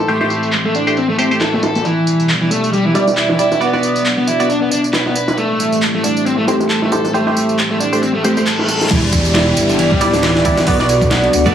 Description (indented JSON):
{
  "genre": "breakbeat, breaks",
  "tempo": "136 BPM",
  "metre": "4/4",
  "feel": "swing 56% on 16ths",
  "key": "A dorian",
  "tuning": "A4 = 440 Hz",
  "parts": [
    { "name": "dark analog pad", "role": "sustained chords", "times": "0.0-11.5 s", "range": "A3 to D5", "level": "-20 LUFS", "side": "equal", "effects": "chorus, sidechain pumping" },
    { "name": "raw garage guitar", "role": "riff", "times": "0.0-11.5 s", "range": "D3 to B4", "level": "-17 LUFS", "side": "equal", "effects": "overdrive, tube saturation, low-pass filter, dub echo" },
    { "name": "band-passed chord stab", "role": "stabs", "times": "0.1-11.5 s", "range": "G3 to D5", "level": "-19 LUFS", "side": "right 2 dB", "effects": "phaser, dub echo" },
    { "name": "breakbeat sampler-style drum kit", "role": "drums", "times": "0.1-11.5 s", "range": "crash cymbal, hi-hat, kick drum, ride cymbal, snare drum", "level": "-20 LUFS", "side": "equal", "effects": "low-pass filter on cymbals, low-pass filter on snare, low-pass filter on hats, low-pass filter on kick" },
    { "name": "house drum kit", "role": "drums", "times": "0.1-11.5 s", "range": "handclaps, ride cymbal, tambourine", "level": "-22 LUFS", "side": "equal", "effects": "low-pass filter on perc, low-pass filter on snare, low-pass filter on cymbals" },
    { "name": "reverse cymbal and downlifter", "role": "sound effects", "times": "8.2-11.5 s", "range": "none", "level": "-22 LUFS", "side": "equal", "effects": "none" },
    { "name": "dark detuned saw bass", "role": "bass", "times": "8.9-11.5 s", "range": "D1 to D2", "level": "-18 LUFS", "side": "equal", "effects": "none" }
  ],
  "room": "light reverb",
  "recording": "heavily compressed radio sound",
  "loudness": "-12 LUFS",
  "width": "side -9 dB against mid",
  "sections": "0.0-8.9 A section; 8.9-11.5 B section",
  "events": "reverse cymbal 8.2-8.9; drop 8.9-11.5",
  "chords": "0.0 Am7; 1.8 Em7; 3.6 Bm; 5.4 Am7; 8.9 Em7; 10.7 Bm",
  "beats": "| 0.08 0.52 0.96 1.41 | 1.85 2.29 2.73 3.17 | 3.61 4.05 4.49 4.93 | 5.38 5.82 6.26 6.70 | 7.14 7.58 8.02 8.46 | 8.91 9.35 9.79 10.23 | 10.67 11.11"
}